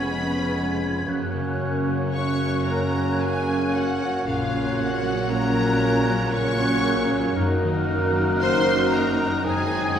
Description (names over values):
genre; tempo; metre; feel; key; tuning
classical, slow romantic movement for symphony orchestra; 55-59 BPM; 3/4; rubato; F# major; A4 = 440 Hz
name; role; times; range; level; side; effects
rich symphonic violin section; melody; 0.0-10.0 s; E#5 to C#6; -30 LUFS; left 2 dB; none
clear clarinet; second line; 0.0-10.0 s; C#4 to Eb4; -31 LUFS; equal; none
mellow small flute group; second line; 0.0-10.0 s; F#6 to G#6; -32 LUFS; left 1 dB; none
warm oboe; second line; 0.0-10.0 s; Bb4 to Eb5; -32 LUFS; right 1 dB; none
warm symphonic violin section; second line; 0.0-10.0 s; E#4 to C#5; -31 LUFS; left 1 dB; none
warm bassoon; accompaniment; 0.0-10.0 s; A#3 to C4; -32 LUFS; right 3 dB; none
warm symphonic viola section; accompaniment; 0.0-10.0 s; C#3 to Eb4; -29 LUFS; right 1 dB; none
mellow French horn section; sustained chords; 0.0-10.0 s; A#3 to Gb4; -30 LUFS; left 1 dB; none
mellow trombone section; sustained chords; 0.0-10.0 s; C#3 to Ab3; -32 LUFS; right 2 dB; none
concert harp; arpeggios; 0.0-10.0 s; E#2 to C#6; -30 LUFS; left 3 dB; none
rich studio cello section; bass; 0.0-10.0 s; E#2 to A#2; -29 LUFS; right 1 dB; none
rich symphonic double bass section; bass; 0.0-10.0 s; E#1 to A#1; -33 LUFS; right 1 dB; none
room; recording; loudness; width
wet scoring stage reverb, RT60 1.6 s; heard from further back in the room; -20 LUFS; side -8 dB against mid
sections
0.0-10.0 A section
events
none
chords
0.0 C#7/E#; 1.1 F#; 4.3 F#/A#; 7.4 Ebm/Gb; 9.5 Ab7/Gb